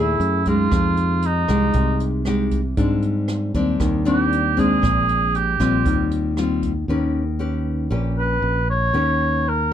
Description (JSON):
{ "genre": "bossa nova", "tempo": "117 BPM", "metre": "4/4", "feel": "straight", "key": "Eb major", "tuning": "A4 = 436 Hz", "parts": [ { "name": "mellow cor anglais", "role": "melody", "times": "0.0-9.7 s", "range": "Eb4 to C#5", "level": "-22 LUFS", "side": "right 3 dB", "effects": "none" }, { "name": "nylon-string guitar", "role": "accompaniment", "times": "0.0-9.7 s", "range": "Ab2 to B4", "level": "-22 LUFS", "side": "left 2 dB", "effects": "none" }, { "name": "fingered electric bass", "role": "bass", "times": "0.0-9.7 s", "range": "Bb1 to Ab2", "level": "-22 LUFS", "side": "equal", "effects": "none" }, { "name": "jazz brush drum kit", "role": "drums", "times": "0.2-6.7 s", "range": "hi-hat, kick drum, rim click", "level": "-26 LUFS", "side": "right 1 dB", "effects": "none" } ], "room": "light reverb", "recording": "dark, warm production", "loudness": "-18 LUFS", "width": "side -10 dB against mid", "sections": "0.0-6.9 A section; 6.9-9.7 A section", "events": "cor anglais solo 0.0-9.7", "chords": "0.2 Gbm9; 0.7 Fm9; 2.8 Abmaj7#11; 4.8 Bb9; 5.9 Eb69; 6.9 D#7b13" }